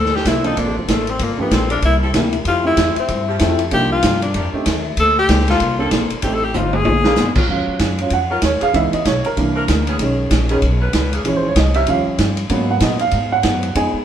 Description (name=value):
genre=jazz, big band swing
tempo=191 BPM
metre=4/4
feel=swing 61% on 8ths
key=Eb minor from 7.5 s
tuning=A4 = 440 Hz
part: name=breathy tenor saxophone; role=melody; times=0.0-7.4 s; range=F3 to A4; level=-19 LUFS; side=left 2 dB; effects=none
part: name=fingerpicked acoustic archtop guitar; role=accompaniment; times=0.0-7.4, 12.5-14.0 s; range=F2 to C5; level=-24 LUFS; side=left 4 dB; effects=none
part: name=upright bass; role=bass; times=0.0-14.0 s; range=F1 to Bb2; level=-20 LUFS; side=equal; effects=none
part: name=vintage drum kit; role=drums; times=0.1-13.8 s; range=crash cymbal, hi-hat, kick drum, ride cymbal, snare drum, toms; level=-21 LUFS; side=right 1 dB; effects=none
part: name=warm baby grand piano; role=accompaniment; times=0.4-14.0 s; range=D#3 to Ab5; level=-20 LUFS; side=right 3 dB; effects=none
part: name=mellow saxophone section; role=sustained chords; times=0.4-11.8 s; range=D3 to B4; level=-26 LUFS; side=equal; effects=none
room=moderate stone room reverb, RT60 1.2 s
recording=band playing live in one room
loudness=-14 LUFS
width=side -9 dB against mid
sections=0.0-7.5 A section; 7.5-14.0 A section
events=tenor saxophone solo 0.0-7.5; drum fill 6.5-7.2; grand piano solo 7.5-14.0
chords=0.0 Bbmaj9; 1.2 Gm9; 1.8 C7; 2.5 Fmaj9; 3.7 Cm11; 4.3 F13; 5.0 Bbmaj9; 6.2 Am7b5; 6.9 Bb7b9; 7.5 Ebm9; 8.7 Dbm7; 9.4 C9; 10.0 B69; 11.2 Bbm7b5; 11.9 Eb7; 12.5 Abm7